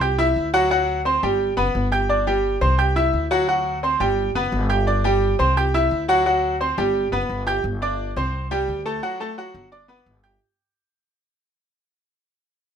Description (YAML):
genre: latin, salsa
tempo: 173 BPM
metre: 4/4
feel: straight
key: G major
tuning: A4 = 440 Hz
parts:
  - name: bright grand piano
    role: accompaniment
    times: 0.0-10.4 s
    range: F#3 to G6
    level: -20 LUFS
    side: right 1 dB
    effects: none
  - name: upright bass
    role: bass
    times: 0.0-10.4 s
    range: F#1 to D2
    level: -24 LUFS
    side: left 1 dB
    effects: none
room: moderate studio reverb, RT60 0.8 s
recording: minimal, uncompressed stereo recording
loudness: -18 LUFS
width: side -8 dB against mid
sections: 0.0-7.6 A section; 7.6-10.4 B section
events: fade-out 7.6-10.4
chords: 0.0 C; 0.7 D7; 1.4 G; 2.8 C; 3.5 D7; 4.2 G; 5.6 C; 6.3 D7; 6.9 G; 7.6 G5; 8.3 C5; 9.0 F#m; 9.7 G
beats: 0.01 0.36 | 0.71 1.05 1.40 1.75 | 2.10 2.44 2.79 3.14 | 3.48 3.83 4.18 4.52 | 4.87 5.22 5.56 5.91 | 6.26 6.60 6.95 7.29 | 7.64 7.99 8.33 8.68 | 9.03 9.37 9.72 10.06